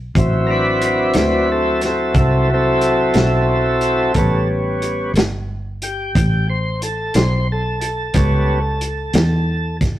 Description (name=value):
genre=slow blues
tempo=60 BPM (dotted quarters)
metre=12/8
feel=straight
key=unclear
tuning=A4 = 439 Hz
part: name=fingered electric bass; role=bass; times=0.0-10.0 s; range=G1 to E2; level=-19 LUFS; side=equal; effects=none
part: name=tonewheel organ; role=sustained chords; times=0.2-9.8 s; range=F#3 to C5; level=-18 LUFS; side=equal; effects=slow rotary speaker
part: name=warm soul drum kit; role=drums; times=0.2-10.0 s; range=hi-hat, kick drum, snare drum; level=-19 LUFS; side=equal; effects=none
room=light reverb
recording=rough rehearsal-room recording, tube saturation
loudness=-15 LUFS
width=side -13 dB against mid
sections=0.0-10.0 A section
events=tonewheel organ solo 0.0-10.0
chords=0.0 D7; 4.2 A7